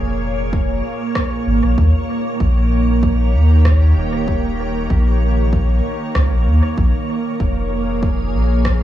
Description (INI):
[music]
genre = ambient dub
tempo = 96 BPM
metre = 4/4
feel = swing 53% on 16ths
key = unclear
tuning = A4 = 439 Hz
[part]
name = soft additive organ-like pad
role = sustained chords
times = 0.0-8.8 s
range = Bb2 to Db5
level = -20 LUFS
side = right 2 dB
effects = ensemble chorus, built-in reverb
[part]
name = soft dub sub bass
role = bass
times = 0.0-8.8 s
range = Eb1 to Eb2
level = -15 LUFS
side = equal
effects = none
[part]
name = electronic kick drum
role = drums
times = 0.5-8.8 s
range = none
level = -20 LUFS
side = equal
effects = overdrive
[part]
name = electronic rim click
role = drums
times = 1.2-8.8 s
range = none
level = -27 LUFS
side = equal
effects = dub echo
[sound]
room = little or no reverb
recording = studio reverb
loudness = -14 LUFS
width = side -12 dB against mid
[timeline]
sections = 0.0-8.8 A section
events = none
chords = 0.0 Bbm7; 1.8 Eb7; 6.8 Bbm7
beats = 0.53 1.15 | 1.78 2.40 3.03 3.65 | 4.28 4.90 5.53 6.15 | 6.78 7.40 8.03 8.65